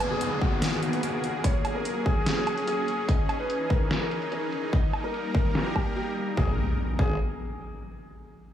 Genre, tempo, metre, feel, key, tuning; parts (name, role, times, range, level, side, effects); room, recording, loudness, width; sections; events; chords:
heavy wobble dubstep; 146 BPM; 4/4; half-time; G# minor; A4 = 442 Hz
felt-muted upright piano; melody; 0.0-7.1 s; F#4 to D#5; -32 LUFS; left 1 dB; diffuse ambient delay
supersaw pad; sustained chords; 0.0-6.6 s; D#3 to A#4; -31 LUFS; equal; sidechain pumping
dubstep drum kit; drums; 0.0-6.3 s; hi-hat, snare drum, woodblock; -32 LUFS; equal; overdrive, low-pass filter on hats, low-pass filter on perc, low-pass filter on snare, low-pass filter on toms, low-pass filter on cymbals, low-pass filter on room
downlifter and impact; sound effects; 0.0-3.1, 6.4-8.0 s; -33 LUFS; left 1 dB
electronic kick drum; drums; 0.4-7.1 s; -26 LUFS; equal; overdrive
formant-sweep wobble bass; bass; 6.4-7.2 s; G#1; -32 LUFS; equal; chorus, overdrive
moderate church reverb, RT60 3.3 s; dreamy mix soaked in reverb, studio ambience; -24 LUFS; side -10 dB against mid
0.0-6.4 A section; 6.4-8.0 B section
filter sweep on drum 0.0-6.4
0.0 G#madd9; 1.4 F#add9; 3.1 C#madd9; 4.7 D#; 6.4 G#madd9